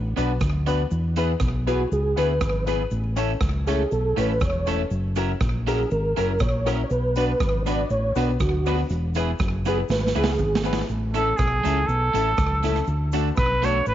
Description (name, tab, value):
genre	ska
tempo	120 BPM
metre	4/4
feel	straight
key	A major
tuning	A4 = 440 Hz
part	fingered electric bass	bass	0.0-13.9 s	E1 to E2	-24 LUFS	equal	none
part	electric guitar at the edge of break-up	accompaniment	0.2-13.8 s	F#3 to B4	-31 LUFS	right 9 dB	none
part	warm upright piano	stabs	0.2-13.8 s	A3 to C#5	-29 LUFS	left 10 dB	none
part	street-band drum kit	drums	0.2-13.7 s	hi-hat, kick drum, rim click, snare drum	-27 LUFS	right 1 dB	slapback echo
part	cabasa	percussion	0.2-13.9 s	none	-50 LUFS	left 13 dB	none
part	mellow tonewheel organ	melody	1.7-10.6 s	F#4 to D5	-26 LUFS	right 2 dB	chorus vibrato, stopped rotary speaker
part	breathy trumpet	melody	11.1-13.9 s	G#4 to C#5	-23 LUFS	right 2 dB	none
room	light reverb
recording	1960s-style stereo with parts hard left and right, vinyl crackle, nothing above 7.5 kHz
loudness	-20 LUFS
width	side -12 dB against mid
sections	0.0-10.9 A section; 10.9-13.9 B section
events	drum fill 9.9-10.9; trumpet solo 10.9-13.9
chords	0.0 D; 0.9 E; 2.9 A; 4.9 F#7; 6.9 Bm; 8.9 E; 10.9 A; 12.9 D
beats	0.41 | 0.91 1.41 1.91 2.41 | 2.91 3.41 3.91 4.41 | 4.91 5.41 5.91 6.40 | 6.90 7.40 7.90 8.40 | 8.90 9.39 9.89 10.39 | 10.89 11.39 11.88 12.38 | 12.88 13.38 13.87